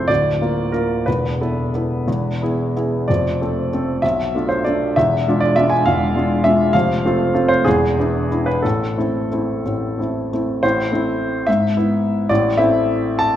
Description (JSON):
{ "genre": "classical, romantic character piece for solo piano", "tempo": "58-74 BPM (dotted quarters)", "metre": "6/8", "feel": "rubato", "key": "A minor", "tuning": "A4 = 440 Hz", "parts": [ { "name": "clear grand piano", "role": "solo", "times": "0.0-13.4 s", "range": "D1 to A5", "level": "-16 LUFS", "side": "equal", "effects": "none" } ], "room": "wet recital hall reverb, RT60 1.7 s", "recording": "minimal, uncompressed stereo recording", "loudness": "-16 LUFS", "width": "side -11 dB against mid", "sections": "0.0-10.6 A section; 10.6-13.4 B section", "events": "none", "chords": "0.1 Bb/D; 1.1 Esus4; 2.1 E; 3.1 F6; 4.0 Bm7b5; 5.0 E7b9; 6.7 F; 7.7 E7; 8.6 Am; 11.5 E/G#; 12.3 Am", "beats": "0.09 | 1.07 2.07 | 3.08 4.03 | 4.96 5.86 | 6.74 7.65 | 8.64 9.65 | 10.63 11.47 | 12.30 13.21" }